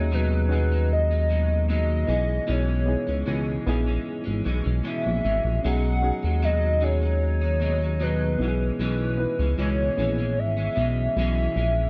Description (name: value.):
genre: indie pop, bedroom pop.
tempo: 76 BPM.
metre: 4/4.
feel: straight.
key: unclear.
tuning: A4 = 441 Hz.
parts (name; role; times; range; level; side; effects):
hollow clarinet-like synth lead; melody; 0.0-11.9 s; B4 to F#5; -30 LUFS; equal; analog chorus, tape echo.
clean electric guitar; accompaniment; 0.0-11.9 s; B2 to D#4; -33 LUFS; equal; analog chorus, warbly pitch drift.
reed electric piano; accompaniment; 0.0-11.9 s; B3 to B4; -35 LUFS; equal; cassette tape.
chorused synth bass; bass; 0.0-11.9 s; G#1 to D#2; -26 LUFS; equal; none.
room: moderate small room reverb, RT60 0.5 s.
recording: dark, warm production.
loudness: -24 LUFS.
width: mono.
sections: 0.0-11.9 A section.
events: none.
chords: 0.0 B6; 2.1 C#m7; 5.6 B6; 8.4 C#m7.